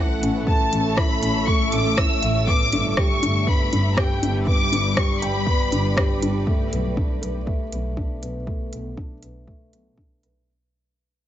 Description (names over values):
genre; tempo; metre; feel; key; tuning
piano and strings electronica; 120 BPM; 4/4; straight; B minor; A4 = 440 Hz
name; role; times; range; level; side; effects
rich studio violin section; melody; 0.0-6.2 s; F#5 to E6; -25 LUFS; left 1 dB; digital delay
granular cloud pad; sustained chords; 0.1-6.5 s; G3 to E5; -29 LUFS; right 1 dB; built-in reverb, sidechain pumping
felt-muted upright piano; riff; 0.0-10.5 s; A3 to G5; -27 LUFS; left 2 dB; digital delay
dark symphonic double bass section; bass; 0.2-10.4 s; G1 to B1; -26 LUFS; equal; sidechain pumping
organic electronic drum kit; drums; 0.2-10.3 s; hi-hat, rim click; -26 LUFS; equal; small room ambience
electronic kick drum; drums; 0.5-10.1 s; none; -22 LUFS; equal; small room ambience
room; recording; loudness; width
small room ambience; nothing above 7.8 kHz; -19 LUFS; side -11 dB against mid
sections
0.0-6.5 A section; 6.5-10.5 B section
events
drop 0.0-6.5; fade-out 6.5-10.5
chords
0.0 A; 2.5 G; 6.5 Bm7